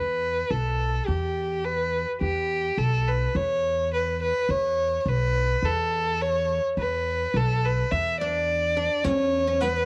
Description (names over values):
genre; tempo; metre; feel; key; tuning
Turkish makam ensemble; 105 BPM; 4/4; straight; E makam huseyni; A4 = 441 Hz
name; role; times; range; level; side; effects
warm violin; melody; 0.0-9.9 s; G4 to E5; -27 LUFS; equal; none
upright bass; bass; 0.0-9.9 s; B1 to E2; -30 LUFS; equal; none
oud; second line; 8.2-9.9 s; B3 to D4; -32 LUFS; equal; none
riq; percussion; 9.0-9.8 s; none; -38 LUFS; equal; none
room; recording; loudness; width
small room ambience; none; -25 LUFS; mono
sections
0.0-9.0 A section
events
none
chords
none